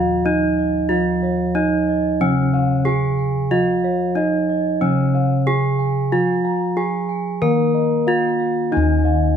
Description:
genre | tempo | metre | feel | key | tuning
Javanese gamelan | 92 BPM | 4/4 | straight | Eb slendro | A4 = 440 Hz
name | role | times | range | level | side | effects
gamelan-type bronze metallophone | melody | 0.0-9.4 s | Db4-40c to Bb4+20c | -20 LUFS | equal | none
gamelan-type bronze metallophone | accompaniment | 0.0-9.4 s | Db3-40c to Bb3+20c | -21 LUFS | right 2 dB | none
gamelan-type bossed gongs | arpeggios | 0.0-9.4 s | Db5-40c to Bb5+20c | -28 LUFS | left 4 dB | none
gamelan-type bronze metallophone | arpeggios | 0.0-9.3 s | Db5-40c to Bb5+20c | -26 LUFS | right 8 dB | none
gamelan-type bossed gongs | bass | 0.0-9.4 s | Eb2 to F4+40c | -24 LUFS | left 3 dB | none
room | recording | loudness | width
moderate recital hall reverb, RT60 1.5 s | none | -16 LUFS | side -8 dB against mid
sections
0.0-9.4 A section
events
none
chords
none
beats
0.25 | 0.90 1.55 2.21 2.86 | 3.51 4.16 4.82 5.47 | 6.12 6.77 7.42 8.08 | 8.73

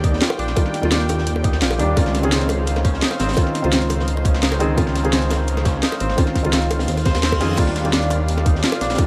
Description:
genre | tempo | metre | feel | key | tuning
liquid drum and bass | 171 BPM | 4/4 | straight | unclear | A4 = 440 Hz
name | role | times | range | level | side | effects
felt-muted upright piano | accompaniment | 0.0-9.1 s | Eb3 to D5 | -26 LUFS | equal | dub echo
warm analog pad | sustained chords | 0.0-9.1 s | Eb4 to G5 | -31 LUFS | equal | chorus, vintage 12-bit sampler grit
concert harp | arpeggios | 0.0-9.1 s | C4 to C5 | -30 LUFS | equal | delay
swelling detuned saw bass | bass | 0.0-9.0 s | Ab1 to F2 | -24 LUFS | equal | none
crunchy breakbeat drum kit | drums | 0.0-9.1 s | hi-hat, snare drum | -32 LUFS | equal | high-pass filter on hats, high-pass filter on snare, high-pass filter on room
electronic kick drum | drums | 0.0-9.1 s | none | -21 LUFS | equal | overdrive
garage drum kit | drums | 0.0-9.1 s | crash cymbal, hi-hat, snare drum | -26 LUFS | equal | overdrive
bongos | percussion | 0.3-9.1 s | none | -32 LUFS | equal | none
reverse cymbal | sound effects | 7.0-7.6 s | none | -37 LUFS | equal | none
room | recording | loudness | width
light reverb, studio reverb | none | -19 LUFS | mono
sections
0.0-9.1 A section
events
reverse cymbal 7.0-7.6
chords
0.0 Ebmaj9; 2.0 Dbmaj9; 7.6 Ebmaj9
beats
0.22 | 0.57 0.92 1.27 1.62 | 1.97 2.32 2.67 3.02 | 3.37 3.73 4.08 4.43 | 4.78 5.13 5.48 5.83 | 6.18 6.53 6.88 7.23 | 7.58 7.93 8.29 8.64 | 8.99

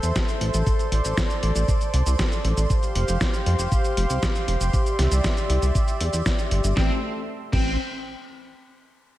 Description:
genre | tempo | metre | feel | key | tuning
italo disco | 118 BPM | 4/4 | straight | A minor | A4 = 439 Hz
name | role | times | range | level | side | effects
warm analog pad | sustained chords | 0.0-7.0 s | A3 to E6 | -28 LUFS | equal | chorus
chorused synth bass | bass | 0.0-7.8 s | F1 to F2 | -23 LUFS | equal | none
dusty soul sampler-style drum kit | drums | 0.0-7.6 s | cabasa, crash cymbal, hi-hat, snare drum | -29 LUFS | equal | small room ambience
electronic kick drum | drums | 0.2-7.6 s | none | -23 LUFS | equal | small room ambience
high-gain lead guitar | melody | 6.8-7.7 s | C4 | -30 LUFS | left 1 dB | distortion, analog delay
room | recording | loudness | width
light reverb, digital ambience | none | -20 LUFS | side -15 dB against mid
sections
0.0-6.8 A section; 6.8-8.8 B section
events
none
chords
0.0 Am; 2.7 Fsus2; 4.7 Cadd9; 6.8 A5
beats
0.16 | 0.67 1.18 1.68 2.19 | 2.70 3.21 3.72 4.22 | 4.73 5.24 5.75 6.26 | 6.77 7.28

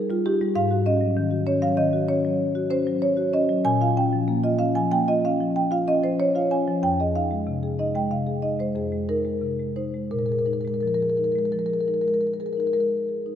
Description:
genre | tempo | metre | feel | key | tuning
classical, contemporary piece for solo marimba | 94 BPM | 5/4 | uneven beats, rubato | Bb minor | A4 = 441 Hz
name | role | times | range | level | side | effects
marimba with soft mallets | solo | 0.0-13.4 s | F2 to Ab5 | -21 LUFS | equal | none
room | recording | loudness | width
wet concert hall reverb, RT60 2.6 s | none | -21 LUFS | side -9 dB against mid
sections
0.0-13.4 A section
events
none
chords
0.0 Fsus2; 0.5 Ab7sus4; 3.7 Bbm; 6.8 Fm7; 10.1 Bb7sus4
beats
| 0.55 1.16 1.78 2.40 3.03 | 3.66 4.28 4.92 5.56 6.19 | 6.83 7.46 8.10 8.76 9.42 | 10.11 10.82 11.53 12.22 12.92

